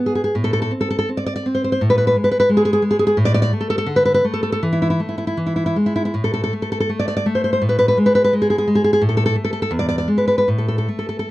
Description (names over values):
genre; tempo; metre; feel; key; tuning
romantic piece for solo classical guitar; 73-90 BPM; 2/4; rubato; A minor; A4 = 441 Hz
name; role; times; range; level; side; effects
nylon-string guitar; solo; 0.0-11.3 s; E2 to D5; -16 LUFS; equal; none
room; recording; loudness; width
little or no reverb; dry, close 1970s-style studio recording; -16 LUFS; side -17 dB against mid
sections
0.4-11.3 A section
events
none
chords
0.4 Am; 1.8 G#m; 3.2 N.C.; 3.9 D5; 4.6 A5/E; 5.4 E; 6.1 N.C.; 7.6 G#m; 9.0 N.C.; 9.7 E; 10.5 N.C.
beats
| 0.35 1.09 | 1.81 2.48 | 3.17 3.87 | 4.62 5.37 | 6.14 6.90 | 7.61 8.33 | 9.02 9.72 | 10.47 11.28